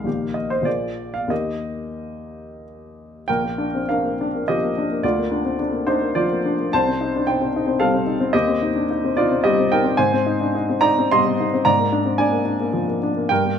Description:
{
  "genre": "classical, romantic character piece for solo piano",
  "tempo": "88-113 BPM",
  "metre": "3/4",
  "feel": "rubato",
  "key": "Eb major, Bb major from 3.3 s",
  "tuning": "A4 = 441 Hz",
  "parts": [
    { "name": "warm baby grand piano", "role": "solo", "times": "0.0-13.6 s", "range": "Bb1 to C6", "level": "-18 LUFS", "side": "equal", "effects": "none" }
  ],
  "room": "moderate large studio reverb, RT60 1.2 s",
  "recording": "close, detailed microphones",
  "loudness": "-18 LUFS",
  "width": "side -8 dB against mid",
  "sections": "0.0-3.3 A section; 3.3-13.6 B section",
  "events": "none",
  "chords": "0.1 Eb/Bb; 0.7 Bb7; 1.3 Eb; 3.3 Bb; 5.0 Bb/D; 6.7 Cm; 8.3 Cm/Eb; 10.0 Abmaj7; 11.6 Bb7/Ab"
}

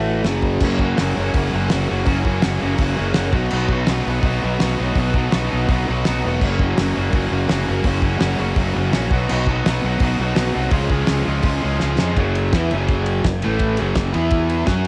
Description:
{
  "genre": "garage rock duo or trio",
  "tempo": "167 BPM",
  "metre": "4/4",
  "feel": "straight",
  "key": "F# major",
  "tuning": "A4 = 440 Hz",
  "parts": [
    { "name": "raw garage guitar", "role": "riff", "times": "0.0-14.9 s", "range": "F#2 to F#4", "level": "-23 LUFS", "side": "equal", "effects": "overdrive, cassette tape" },
    { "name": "fuzz fingered electric bass", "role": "bass", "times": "0.0-14.9 s", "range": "E1 to F#2", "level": "-24 LUFS", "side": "equal", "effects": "overdrive" },
    { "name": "cloth-damped thuddy drum kit", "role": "drums", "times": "0.2-14.9 s", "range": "crash cymbal, hi-hat, kick drum, ride cymbal, snare drum", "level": "-24 LUFS", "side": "equal", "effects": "cassette tape" }
  ],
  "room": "light reverb, small room ambience",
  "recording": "home recording on cassette",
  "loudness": "-19 LUFS",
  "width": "mono",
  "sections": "0.6-12.2 A section; 12.2-14.9 B section",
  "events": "drum fill 11.8-12.2",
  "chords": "0.2 F#5; 0.6 F#; 3.3 B; 6.4 F#; 9.1 B; 10.7 C#; 12.2 F#5; 13.4 A5; 13.8 F#5; 14.1 E5"
}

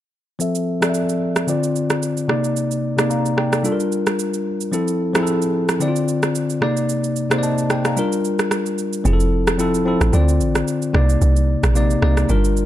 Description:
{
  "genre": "afrobeats",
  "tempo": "111 BPM",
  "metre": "4/4",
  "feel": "swing 55% on 16ths",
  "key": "F major",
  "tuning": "A4 = 440 Hz",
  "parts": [
    { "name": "bell-like tine electric piano", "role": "accompaniment", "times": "0.4-12.7 s", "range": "C3 to Bb5", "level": "-19 LUFS", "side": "left 1 dB", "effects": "low-pass filter" },
    { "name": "electronic shaker and rim click", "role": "drums", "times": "0.4-12.7 s", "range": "none", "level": "-23 LUFS", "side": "right 2 dB", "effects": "none" },
    { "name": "deep log drum bass", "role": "bass", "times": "9.1-12.7 s", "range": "F1 to D2", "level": "-17 LUFS", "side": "equal", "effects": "none" }
  ],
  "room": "light reverb",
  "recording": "dark, warm production",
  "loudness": "-17 LUFS",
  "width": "side -13 dB against mid",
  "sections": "0.4-9.1 A section; 9.1-12.7 B section",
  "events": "filter sweep on tine electric piano 0.4-9.1; kick muted 9.1-12.7",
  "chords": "0.4 Fmaj7; 1.5 Dm7; 2.3 Cm9; 3.6 Gm7; 4.7 Fmaj7; 5.8 Dm7; 6.6 Cm9; 8.0 Gm7; 9.1 Fmaj7; 10.1 Dm7; 10.9 Cm9"
}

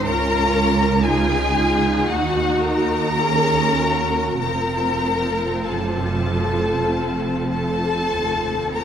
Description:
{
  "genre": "classical, slow romantic movement for string orchestra",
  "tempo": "47-61 BPM",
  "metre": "4/4",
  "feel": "rubato",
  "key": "unclear",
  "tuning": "A4 = 436 Hz",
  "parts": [
    { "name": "clear studio violin section", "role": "melody", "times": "0.0-8.8 s", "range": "Gb5 to Bb5", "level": "-24 LUFS", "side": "left 5 dB", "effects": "none" },
    { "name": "rich studio violin section", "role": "second line", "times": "0.0-8.8 s", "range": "Gb4 to Bb4", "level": "-24 LUFS", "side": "left 2 dB", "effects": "none" },
    { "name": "rich studio viola section", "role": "accompaniment", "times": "0.0-8.8 s", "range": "C4 to Ab4", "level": "-24 LUFS", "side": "right 1 dB", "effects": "none" },
    { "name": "rich studio cello section", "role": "bass", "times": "0.0-8.8 s", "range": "Db2 to Gb2", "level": "-26 LUFS", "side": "right 3 dB", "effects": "none" },
    { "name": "rich studio double bass section", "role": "bass", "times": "0.1-8.8 s", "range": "F1 to Eb2", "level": "-26 LUFS", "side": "right 4 dB", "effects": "none" }
  ],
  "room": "moderate concert hall reverb, RT60 2.1 s",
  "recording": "none",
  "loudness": "-18 LUFS",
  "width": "side -8 dB against mid",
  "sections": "0.0-8.8 A section",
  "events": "none",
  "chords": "0.1 Bbm/Db; 2.1 Ebm7; 4.4 F"
}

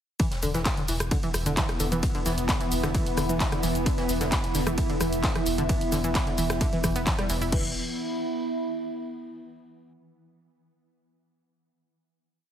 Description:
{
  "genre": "driving peak-time techno",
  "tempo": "131 BPM",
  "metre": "4/4",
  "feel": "straight",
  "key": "unclear",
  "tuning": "A4 = 440 Hz",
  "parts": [
    { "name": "analog pluck", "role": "riff", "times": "0.2-7.7 s", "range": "D3 to E4", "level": "-31 LUFS", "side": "equal", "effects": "chorus, sidechain pumping, dub echo" },
    { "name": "swarming drone", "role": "drone", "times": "1.4-7.6 s", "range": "E3 to B3", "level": "-35 LUFS", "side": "equal", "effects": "built-in reverb, sidechain pumping" },
    { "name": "electronic kick drum", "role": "drums", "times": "0.2-7.6 s", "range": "none", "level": "-28 LUFS", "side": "equal", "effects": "none" },
    { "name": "open jazz drum kit", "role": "drums", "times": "0.2-7.4 s", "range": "hi-hat, snare drum", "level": "-41 LUFS", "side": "left 1 dB", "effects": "none" },
    { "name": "punchy analog drum machine", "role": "drums", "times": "0.2-7.6 s", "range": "crash cymbal, handclaps, hi-hat, ride cymbal, rim click, shaker", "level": "-31 LUFS", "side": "equal", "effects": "none" },
    { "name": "warbly tape-like pad", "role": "texture", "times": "1.1-9.3 s", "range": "B3 to B5", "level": "-32 LUFS", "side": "right 1 dB", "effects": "chorus, built-in reverb, sidechain pumping" },
    { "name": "saturated sub bass", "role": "bass", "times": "0.4-7.7 s", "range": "E1", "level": "-32 LUFS", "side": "equal", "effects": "tube saturation, sidechain pumping, low-pass filter" }
  ],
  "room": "light reverb, digital ambience",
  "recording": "heavily compressed radio sound",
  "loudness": "-24 LUFS",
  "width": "side -9 dB against mid",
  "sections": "0.2-7.5 drop; 7.5-9.4 final chord",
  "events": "drop 0.2-7.5",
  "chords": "0.2 E5"
}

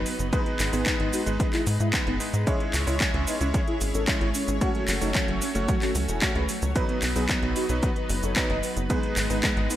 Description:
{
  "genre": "italo disco",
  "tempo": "112 BPM",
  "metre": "4/4",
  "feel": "straight",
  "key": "C# minor",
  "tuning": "A4 = 443 Hz",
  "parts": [
    { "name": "lush unison pad", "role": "sustained chords", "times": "0.0-9.8 s", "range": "F#3 to C#5", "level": "-32 LUFS", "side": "left 1 dB", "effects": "chorus" },
    { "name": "tight sequencer bass", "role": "bass", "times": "0.0-9.7 s", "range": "E1 to G#2", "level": "-28 LUFS", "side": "equal", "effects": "tube saturation" },
    { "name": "mellow synth brass", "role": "melody", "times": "0.1-9.8 s", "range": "F#3 to D#5", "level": "-31 LUFS", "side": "equal", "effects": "chorus, digital delay" },
    { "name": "house drum kit", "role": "drums", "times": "0.1-9.8 s", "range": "cabasa, handclaps, hi-hat", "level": "-29 LUFS", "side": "equal", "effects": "overdrive, gated reverb" },
    { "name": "bright electric grand piano", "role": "stabs", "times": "0.3-9.8 s", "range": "F#3 to C#5", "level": "-32 LUFS", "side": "right 1 dB", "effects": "none" },
    { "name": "electronic kick drum", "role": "drums", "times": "0.3-9.5 s", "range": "none", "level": "-27 LUFS", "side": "equal", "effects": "overdrive" }
  ],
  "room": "digital ambience",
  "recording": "none",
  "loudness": "-23 LUFS",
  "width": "side -12 dB against mid",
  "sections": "0.0-9.8 A section",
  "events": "none",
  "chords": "0.3 G#m; 2.5 C#m; 4.6 F#m; 6.8 B; 8.9 G#m"
}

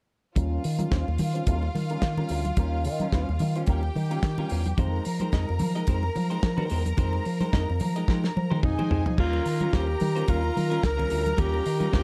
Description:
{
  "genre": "disco",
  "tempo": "109 BPM",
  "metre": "4/4",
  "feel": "swing 56% on 16ths",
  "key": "unclear",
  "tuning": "A4 = 440 Hz",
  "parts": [
    { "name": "clear symphonic string section", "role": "second line", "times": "0.4-12.0 s", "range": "F4 to Bb5", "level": "-36 LUFS", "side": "equal", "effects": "none" },
    { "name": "clean electric guitar", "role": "accompaniment", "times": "0.4-12.0 s", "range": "G3 to Eb5", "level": "-37 LUFS", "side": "equal", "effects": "low-pass filter" },
    { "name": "fingered electric bass with an envelope filter", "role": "bass", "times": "0.4-12.0 s", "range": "Db2 to F3", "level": "-30 LUFS", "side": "equal", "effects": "none" },
    { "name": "damped 70s drum kit", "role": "drums", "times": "0.4-12.0 s", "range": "crash cymbal, hi-hat, kick drum, snare drum, toms", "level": "-30 LUFS", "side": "equal", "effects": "none" },
    { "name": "congas", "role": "percussion", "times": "0.4-11.9 s", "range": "none", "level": "-36 LUFS", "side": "equal", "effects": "none" },
    { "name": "breathy alto saxophone", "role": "melody", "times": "8.6-12.0 s", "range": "Eb4 to Bb4", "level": "-30 LUFS", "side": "equal", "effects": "none" }
  ],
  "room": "light reverb, studio ambience",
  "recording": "dark, warm production",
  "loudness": "-26 LUFS",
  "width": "mono",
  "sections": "0.4-9.2 A section; 9.2-12.0 B section",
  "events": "filter sweep on clean electric guitar 0.4-9.2; drum fill 8.1-9.2",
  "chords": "0.4 Eb9; 4.8 Fm9; 9.2 Eb9"
}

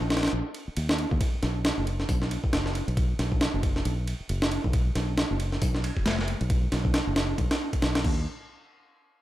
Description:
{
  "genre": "breakbeat, breaks",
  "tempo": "136 BPM",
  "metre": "4/4",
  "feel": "swing 58% on 16ths",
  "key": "unclear",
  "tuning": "A4 = 436 Hz",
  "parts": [
    { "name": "fingered electric bass", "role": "bass", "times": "0.0-8.2 s", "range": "F#1 to Eb2", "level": "-29 LUFS", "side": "equal", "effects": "none" },
    { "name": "breakbeat sampler-style drum kit", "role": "drums", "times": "0.1-8.1 s", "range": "crash cymbal, hi-hat, kick drum, ride cymbal, snare drum", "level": "-26 LUFS", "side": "equal", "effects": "none" }
  ],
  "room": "light reverb",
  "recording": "none",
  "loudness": "-24 LUFS",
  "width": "side -14 dB against mid",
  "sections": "0.0-8.3 A section",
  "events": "none",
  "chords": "none"
}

